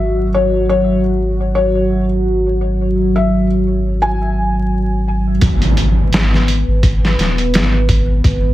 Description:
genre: trip hop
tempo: 85 BPM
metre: 4/4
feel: swing 56% on 16ths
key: G# minor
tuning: A4 = 441 Hz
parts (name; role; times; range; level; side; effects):
- felt-muted upright piano; melody; 0.0-5.3 s; C#5 to G#5; -20 LUFS; left 4 dB; vintage 12-bit sampler grit, tape echo
- dark analog pad; sustained chords; 0.0-8.5 s; F#3 to B4; -18 LUFS; right 1 dB; chorus
- warm sub bass; bass; 0.0-8.5 s; D#1 to G#1; -16 LUFS; equal; none
- trip hop sampler-style drum kit; drums; 5.4-8.4 s; hi-hat, kick drum, snare drum; -15 LUFS; equal; none
- impact; sound effects; 5.4-8.2 s; none; -21 LUFS; equal; none
room: digital ambience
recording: vinyl crackle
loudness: -12 LUFS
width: side -15 dB against mid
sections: 0.0-5.4 A section; 5.4-8.5 B section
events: impact 5.4-8.2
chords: 0.0 G#7sus4; 5.4 G#m

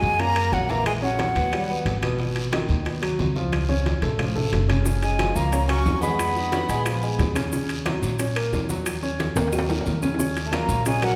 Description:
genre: Afro-Cuban jazz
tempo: 180 BPM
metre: 4/4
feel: straight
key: Eb minor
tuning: A4 = 440 Hz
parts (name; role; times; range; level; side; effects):
- breathy jazz flute; melody; 0.0-2.0, 5.0-7.3, 10.5-11.2 s; Gb5 to Db6; -28 LUFS; equal; none
- clear tenor saxophone; second line; 0.0-2.0, 5.0-7.3, 10.5-11.2 s; Gb3 to Db4; -33 LUFS; equal; none
- warm grand piano; accompaniment; 0.0-11.2 s; B2 to Eb5; -30 LUFS; equal; none
- upright bass; bass; 0.0-11.2 s; Gb1 to Gb2; -28 LUFS; equal; none
- bongos; percussion; 0.0-11.0 s; none; -37 LUFS; equal; none
- congas; percussion; 0.0-11.2 s; none; -34 LUFS; equal; none
- guiro; percussion; 0.0-11.2 s; none; -41 LUFS; equal; none
- timbales; percussion; 0.2-11.2 s; none; -35 LUFS; equal; none
- claves; percussion; 0.4-11.2 s; none; -43 LUFS; equal; none
- maracas; percussion; 4.9-11.2 s; none; -41 LUFS; equal; none
room: wet recital hall reverb, RT60 1.7 s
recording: recorded in a church or concert hall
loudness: -24 LUFS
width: mono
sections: 0.0-10.2 A section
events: drum fill 3.5-4.9, 9.4-10.2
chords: 0.0 Ebm7 (rootless); 0.9 Bbdim; 1.5 Ebaug; 2.2 Abm7; 3.5 Dbaug; 4.9 Gbmaj9; 6.2 Fm7b5; 6.9 Bb5; 7.5 Ebm7

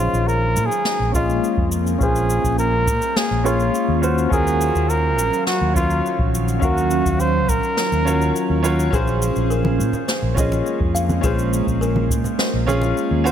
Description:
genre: sunset chillout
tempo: 104 BPM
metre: 4/4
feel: straight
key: Bb minor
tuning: A4 = 436 Hz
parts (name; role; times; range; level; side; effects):
- warm flugelhorn; melody; 0.0-8.6 s; F4 to C5; -22 LUFS; equal; digital delay
- bright baby grand piano; accompaniment; 0.0-13.3 s; Gb3 to F5; -24 LUFS; equal; auto-pan, low-pass filter, tape echo
- ethereal airy pad; sustained chords; 0.0-13.3 s; Eb3 to F5; -25 LUFS; equal; ensemble chorus, built-in reverb, phaser
- fretless electric bass; bass; 0.0-13.3 s; Bb1 to Bb2; -21 LUFS; equal; none
- cabasa and snare drum; drums; 0.1-13.3 s; none; -27 LUFS; left 1 dB; none
- electronic kick drum; drums; 1.1-12.2 s; none; -24 LUFS; equal; none
- buzzing kalimba; arpeggios; 8.9-13.3 s; Ab4 to Gb5; -28 LUFS; left 3 dB; tape echo
- congas; percussion; 9.6-12.9 s; none; -26 LUFS; equal; none
room: moderate lush hall reverb, RT60 2.1 s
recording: none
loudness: -17 LUFS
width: side -9 dB against mid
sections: 0.0-13.3 A section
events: filter sweep on grand piano 0.0-13.3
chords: 0.0 Bbm9; 4.0 Ebm9; 8.9 Bbm9

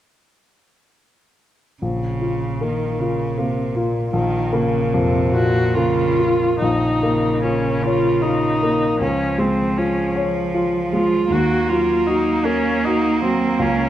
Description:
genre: classical, slow romantic movement for piano quintet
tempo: 67-82 BPM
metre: 3/4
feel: rubato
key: Bb minor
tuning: A4 = 439 Hz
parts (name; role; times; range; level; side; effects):
- rich cello; second line; 1.8-13.9 s; Bb2 to Bb3; -24 LUFS; right 5 dB; none
- warm grand piano; accompaniment; 1.8-13.9 s; Bb1 to Db5; -20 LUFS; left 2 dB; none
- warm viola; accompaniment; 5.3-13.9 s; C4 to Gb4; -20 LUFS; equal; none
room: moderate recital hall reverb, RT60 1.5 s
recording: dark, warm production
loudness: -17 LUFS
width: side -12 dB against mid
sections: 1.8-6.6 A section; 6.6-13.9 B section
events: none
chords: 1.8 Bbm; 9.0 Db; 11.3 Ebm

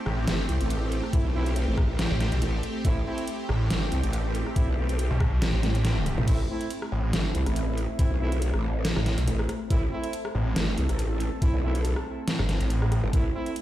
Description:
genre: heavy wobble dubstep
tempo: 140 BPM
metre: 4/4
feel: swing 54% on 16ths, half-time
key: A minor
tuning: A4 = 441 Hz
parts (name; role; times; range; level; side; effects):
- supersaw pad; sustained chords; 0.0-13.6 s; A3 to A4; -34 LUFS; right 1 dB; phaser, sidechain pumping, low-pass filter
- snarling distorted saw bass; bass; 0.1-13.0 s; G1 to B1; -24 LUFS; equal; distortion, overdrive
- dubstep drum kit; drums; 0.1-13.6 s; crash cymbal, hi-hat, rim click, snare drum, toms; -31 LUFS; equal; none
- growl bass; bass; 0.3-13.3 s; G1 to C2; -26 LUFS; equal; chorus, overdrive
- bright brass ensemble; stabs; 1.1-13.5 s; A3 to E4; -36 LUFS; right 2 dB; dub echo
- electronic kick drum; drums; 1.1-13.2 s; none; -23 LUFS; equal; none
room: little or no reverb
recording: played on a big sound system in a bare room, stone room reverb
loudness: -24 LUFS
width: side -14 dB against mid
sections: 0.0-6.3 A section; 6.3-13.6 A section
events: drop 0.0-6.3, 6.3-13.6; kick drops out 5.4-6.3; drum fill 5.6-6.3; band accent 5.8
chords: 0.0 Am

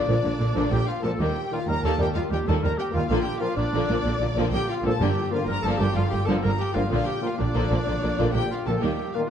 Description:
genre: cinematic, heroic adventure film score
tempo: 126 BPM (dotted quarters)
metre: 12/8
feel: straight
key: unclear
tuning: A4 = 439 Hz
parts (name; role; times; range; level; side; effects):
- warm symphonic violin section; melody; 0.0-9.2 s; D5 to Bb5; -31 LUFS; left 4 dB; none
- bright clarinet; second line; 0.0-9.3 s; D4 to Bb4; -32 LUFS; left 1 dB; none
- mellow cor anglais; second line; 0.0-9.3 s; D4 to Bb4; -35 LUFS; right 1 dB; none
- warm symphonic violin section; second line; 0.0-9.0 s; G3 to D4; -34 LUFS; left 3 dB; none
- rich symphonic viola section; accompaniment; 0.0-9.0 s; D3 to G3; -31 LUFS; right 1 dB; none
- clear trombone section; sustained chords; 0.1-9.2 s; Bb2 to F3; -33 LUFS; right 3 dB; none
- mellow French horn section; sustained chords; 0.1-9.2 s; Bb3 to Bb4; -34 LUFS; left 5 dB; none
- rich symphonic cello section; bass; 0.1-8.9 s; Eb2 to Bb2; -29 LUFS; right 2 dB; none
- rich symphonic double bass section; bass; 0.1-8.9 s; G1 to Eb2; -28 LUFS; right 2 dB; none
- timpani; percussion; 5.0-5.4 s; G2; -33 LUFS; left 1 dB; none
room: moderate scoring stage reverb, RT60 1.5 s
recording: dark, warm production, nothing above 10.9 kHz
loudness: -22 LUFS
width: side -8 dB against mid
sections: 0.0-9.3 A section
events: none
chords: 0.0 Bb; 1.2 Eb; 3.1 Bb; 5.0 Gm7; 6.9 Bb

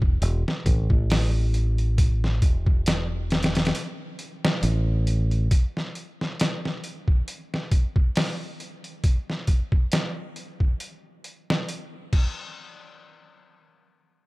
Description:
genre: trip hop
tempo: 68 BPM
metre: 4/4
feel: swing 55% on 16ths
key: unclear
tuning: A4 = 443 Hz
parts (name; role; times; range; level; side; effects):
- fingered electric bass; bass; 0.0-5.5 s; E1 to A1; -23 LUFS; equal; none
- trip hop sampler-style drum kit; drums; 0.0-12.3 s; crash cymbal, hi-hat, kick drum, snare drum; -23 LUFS; equal; none
room: little or no reverb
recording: none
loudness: -22 LUFS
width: side -22 dB against mid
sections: 0.0-12.6 A section; 12.6-14.3 B section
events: none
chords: none

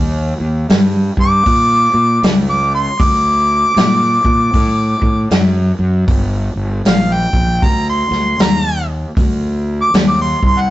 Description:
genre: blues rock power trio and southern rock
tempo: 78 BPM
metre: 4/4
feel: swing 62% on 8ths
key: G minor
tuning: A4 = 440 Hz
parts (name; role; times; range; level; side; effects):
- fuzz fingered electric bass; bass; 0.0-10.7 s; G1 to Bb2; -16 LUFS; equal; overdrive
- vintage drum kit; drums; 0.7-10.6 s; hi-hat, kick drum, snare drum; -15 LUFS; equal; none
- bright harmonica; melody; 1.2-10.7 s; F5 to D6; -14 LUFS; equal; overdrive
room: light reverb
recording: rough rehearsal-room recording, warm saturation, nothing above 8.0 kHz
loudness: -11 LUFS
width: side -15 dB against mid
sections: 0.0-10.7 A section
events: harmonica solo 0.0-10.7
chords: 0.0 Ebmaj7; 3.0 D; 6.1 Gm

